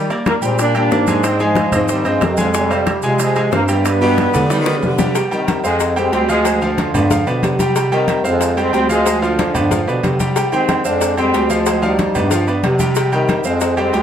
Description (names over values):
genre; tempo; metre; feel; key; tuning
latin, salsa; 184 BPM; 4/4; straight; C minor; A4 = 439 Hz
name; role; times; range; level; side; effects
mellow trombone section; melody; 0.0-14.0 s; C3 to Eb4; -19 LUFS; equal; plate reverb, tape echo
bright grand piano; accompaniment; 0.0-14.0 s; Eb3 to Ab5; -20 LUFS; right 1 dB; none
mellow bass clarinet; bass; 0.0-14.0 s; D2 to Eb3; -19 LUFS; equal; none
congas; percussion; 0.1-14.0 s; none; -22 LUFS; left 2 dB; none
maracas; percussion; 0.1-14.0 s; none; -32 LUFS; right 7 dB; none
timbales and agogo bells; percussion; 0.1-14.0 s; none; -26 LUFS; right 3 dB; none
bongos and cowbell; percussion; 0.3-14.0 s; none; -25 LUFS; left 8 dB; none
bright saxophone section; second line; 4.0-5.2 s; B2 to G3; -21 LUFS; left 2 dB; none
room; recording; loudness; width
moderate large studio reverb, RT60 1.0 s; none; -13 LUFS; side -9 dB against mid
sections
0.0-5.2 A section; 5.2-14.0 B section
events
drum fill 4.3-5.2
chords
0.0 Ebmaj7 (rootless); 1.2 Ab; 2.5 Fm; 3.8 G; 5.2 Cm; 5.8 Fmadd9; 6.5 Dm7b5; 7.1 G7; 7.8 Cm; 8.4 Fmadd9; 9.1 Dm7b5; 9.7 G7; 10.4 Cm; 11.0 Fmadd9; 11.7 Dm7b5; 12.3 G7; 13.0 Cm